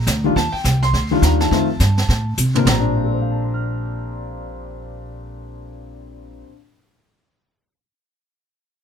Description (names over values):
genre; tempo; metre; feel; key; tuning
jazz piano trio; 208 BPM; 4/4; swing 60% on 8ths; Bb major; A4 = 439 Hz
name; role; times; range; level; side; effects
warm grand piano; melody; 0.0-6.7 s; Bb2 to F6; -22 LUFS; left 3 dB; none
upright bass; bass; 0.0-6.4 s; Bb1 to C3; -20 LUFS; right 1 dB; none
jazz brush drum kit; drums; 0.1-2.9 s; brushed snare drum, hi-hat, kick drum, snare drum, toms; -22 LUFS; right 1 dB; none
room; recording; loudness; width
little or no reverb; none; -16 LUFS; side -7 dB against mid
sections
0.4-2.7 A section; 2.7-5.0 B section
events
drum fill 2.4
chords
0.4 Ebmaj9; 1.5 F; 2.7 Bb69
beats
0.07 | 0.36 0.65 0.94 1.22 | 1.51 1.80 2.09 2.38 | 2.66 2.95 3.24 3.53 | 3.82 4.11 4.39 4.68